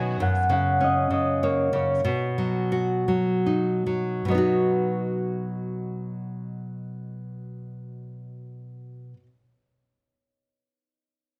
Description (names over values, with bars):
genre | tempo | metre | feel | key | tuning
children's music, lullaby | 65-100 BPM | 3/4 | rubato | B major pentatonic | A4 = 439 Hz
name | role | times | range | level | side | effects
concert harp | melody | 0.0-9.2 s | B3 to G#5 | -29 LUFS | equal | none
nylon-string guitar | accompaniment | 0.0-9.3 s | F#2 to D#5 | -27 LUFS | equal | none
room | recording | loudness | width
light reverb | close, detailed microphones | -25 LUFS | mono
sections
0.2-4.3 A section; 4.3-9.7 B section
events
nylon-string guitar fill 0.0; slowing down 0.2-4.3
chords
0.2 F#; 2.0 B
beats
| 0.21 0.81 1.42 | 2.04 2.71 3.45 | 4.30 5.22 6.11 | 6.99 7.87 8.76